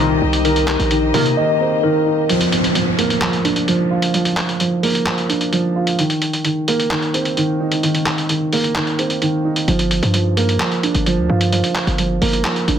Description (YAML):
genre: hip hop, trap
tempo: 130 BPM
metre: 4/4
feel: half-time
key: unclear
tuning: A4 = 440 Hz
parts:
  - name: dark baby grand piano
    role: accompaniment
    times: 0.0-12.8 s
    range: Eb3 to F4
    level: -18 LUFS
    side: right 2 dB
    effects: low-pass filter
  - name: dark chamber string section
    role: sustained chords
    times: 0.0-2.3 s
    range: G4 to Bb5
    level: -25 LUFS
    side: left 4 dB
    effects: none
  - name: mellow tine electric piano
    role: arpeggios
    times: 0.0-2.3 s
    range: Eb4 to Eb5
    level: -19 LUFS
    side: left 2 dB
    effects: medium stereo tremolo, low-pass filter, ping-pong delay
  - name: chorused polysynth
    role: stabs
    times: 0.0-1.2 s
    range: Bb2 to Eb3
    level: -21 LUFS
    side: left 2 dB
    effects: phaser
  - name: hard-hitting 808-style bass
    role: bass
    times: 0.0-1.4, 9.7-12.8 s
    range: G1 to C3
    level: -19 LUFS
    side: left 1 dB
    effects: none
  - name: lo-fi sampler-style drum kit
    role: drums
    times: 0.3-12.8 s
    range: handclaps, hi-hat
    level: -21 LUFS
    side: equal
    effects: none
  - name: downlifter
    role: sound effects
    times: 2.3-6.0 s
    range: none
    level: -24 LUFS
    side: left 1 dB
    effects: none
room: light reverb, digital ambience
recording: dense, heavily limited modern master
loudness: -15 LUFS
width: side -8 dB against mid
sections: 0.0-2.3 A section; 2.3-12.8 B section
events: drums muted 1.4-2.3; kick muted 2.3-9.7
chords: 0.0 Cm7; 2.3 Bb/F; 6.0 Cm7; 9.7 Gm7